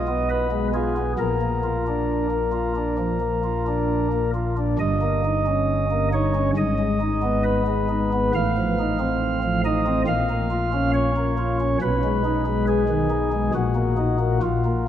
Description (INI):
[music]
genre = classical, chorale-style piece for pipe organ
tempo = 68 BPM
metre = 4/4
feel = straight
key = unclear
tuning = A4 = 440 Hz
[part]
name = pipe organ, flutes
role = solo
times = 0.0-14.9 s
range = G1 to F5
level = -20 LUFS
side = equal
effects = none
[sound]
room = wet church reverb, RT60 2.9 s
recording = none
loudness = -20 LUFS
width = side -10 dB against mid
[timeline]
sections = 0.0-14.9 A section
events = none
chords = 0.0 Fm7b5/Cb; 1.2 Bb; 4.8 Eb7/G; 6.6 Abm; 8.3 F7/A; 10.1 Bbm; 11.8 Abm/Cb; 13.5 Ebm/Bb